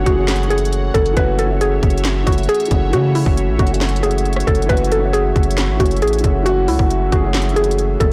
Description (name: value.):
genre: hip hop, trap.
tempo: 136 BPM.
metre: 4/4.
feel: half-time.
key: F# minor.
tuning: A4 = 441 Hz.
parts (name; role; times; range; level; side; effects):
mallet-like synth pluck; melody; 0.0-8.1 s; E4 to B4; -22 LUFS; equal; chorus, delay.
dark grand piano; accompaniment; 0.0-8.1 s; E3 to G#4; -24 LUFS; equal; none.
sweeping resonant pad; sustained chords; 0.0-8.1 s; F#4 to F#5; -32 LUFS; equal; chorus.
long sustained 808-style bass; bass; 0.0-8.1 s; F#1 to C#3; -21 LUFS; equal; none.
trap drum kit; drums; 0.1-8.1 s; handclaps, hi-hat, kick drum, rim click, snare drum; -21 LUFS; equal; none.
room: little or no reverb.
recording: blown-out, overdriven recording, overdrive.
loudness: -16 LUFS.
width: mono.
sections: 0.0-8.1 A section.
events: none.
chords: 0.0 F#m7.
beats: 0.28 0.72 | 1.17 1.61 2.05 2.49 | 2.93 3.37 3.81 4.25 | 4.70 5.14 5.58 6.02 | 6.46 6.90 7.34 7.78.